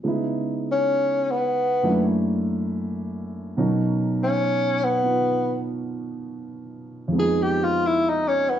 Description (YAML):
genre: jazz ballad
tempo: 68 BPM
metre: 4/4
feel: swing 68% on 8ths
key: unclear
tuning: A4 = 441 Hz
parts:
  - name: dark upright piano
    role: accompaniment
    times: 0.0-8.6 s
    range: F2 to A#4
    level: -24 LUFS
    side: right 1 dB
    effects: none
  - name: warm tenor saxophone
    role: melody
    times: 0.7-8.6 s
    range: B3 to Ab4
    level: -21 LUFS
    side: left 1 dB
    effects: none
room: wet large studio reverb, RT60 0.9 s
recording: heard from further back in the room, nothing above 7.8 kHz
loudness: -20 LUFS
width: side -10 dB against mid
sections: 0.0-8.6 A section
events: tenor saxophone solo 0.0-8.6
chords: 0.0 Dbm9; 1.8 Gb7alt; 3.6 Bmaj9; 7.1 Fm7b5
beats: | 0.03 0.92 1.81 2.70 | 3.58 4.46 5.35 6.23 | 7.12 8.01